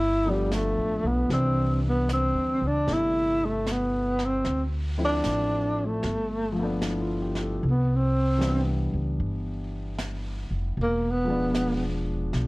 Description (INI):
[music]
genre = jazz ballad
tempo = 76 BPM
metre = 4/4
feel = swing 67% on 8ths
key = C major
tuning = A4 = 440 Hz
[part]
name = breathy tenor saxophone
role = melody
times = 0.0-11.8 s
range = G3 to E4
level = -25 LUFS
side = equal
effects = none
[part]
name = upright bass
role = bass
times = 0.0-12.5 s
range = E1 to D2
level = -28 LUFS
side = equal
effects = none
[part]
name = clear concert grand piano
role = accompaniment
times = 0.3-12.5 s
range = C3 to B4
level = -32 LUFS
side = left 1 dB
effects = none
[part]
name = jazz brush drum kit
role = drums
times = 0.5-12.5 s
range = brushed snare drum, hi-hat, snare drum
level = -39 LUFS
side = right 1 dB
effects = none
[sound]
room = light reverb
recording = cassette tape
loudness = -24 LUFS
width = side -23 dB against mid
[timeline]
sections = 0.0-7.6 A section; 7.6-12.5 B section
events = tenor saxophone solo 7.6-12.5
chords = 0.0 G9; 1.3 Cmaj9; 4.4 Dm7; 6.0 G9; 7.6 Cmaj9; 10.8 E7b9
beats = 0.52 | 1.31 2.09 2.88 3.66 | 4.45 5.23 6.02 6.82 | 7.61 8.40 9.19 9.97 | 10.76 11.55 12.33